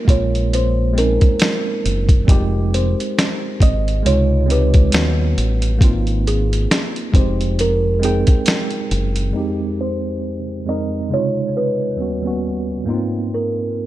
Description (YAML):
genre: lo-fi hip hop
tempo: 68 BPM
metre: 4/4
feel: swing 57% on 16ths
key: F minor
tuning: A4 = 438 Hz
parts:
  - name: kalimba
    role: melody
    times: 0.0-13.9 s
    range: Ab4 to Eb5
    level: -23 LUFS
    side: right 1 dB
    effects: low-pass filter
  - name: tine electric piano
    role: accompaniment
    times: 0.0-13.9 s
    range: Eb2 to G5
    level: -22 LUFS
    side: right 1 dB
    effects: overdrive, medium stereo tremolo, low-pass filter
  - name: deep dub fingered electric bass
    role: bass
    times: 0.1-9.3 s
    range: F1 to Eb2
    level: -18 LUFS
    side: equal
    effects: none
  - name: boom bap sampler-style drum kit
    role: drums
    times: 0.1-9.3 s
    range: hi-hat, kick drum, snare drum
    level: -16 LUFS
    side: equal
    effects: vintage 12-bit sampler grit
room: little or no reverb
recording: none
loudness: -15 LUFS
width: side -14 dB against mid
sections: 0.0-9.3 A section; 9.3-13.9 B section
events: filter sweep 9.3-13.9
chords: 0.1 Bbm9; 2.3 Fm9; 4.0 Dbmaj7; 4.9 Eb7alt; 5.8 Ab69; 7.1 Fm7; 9.3 Fm9; 11.1 Dbmaj7; 12.0 Eb7alt; 12.9 Ab69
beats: 0.52 1.40 | 2.28 3.17 4.05 4.93 | 5.81 6.70 7.58 8.46 | 9.34 10.22 11.11 11.99 | 12.87 13.75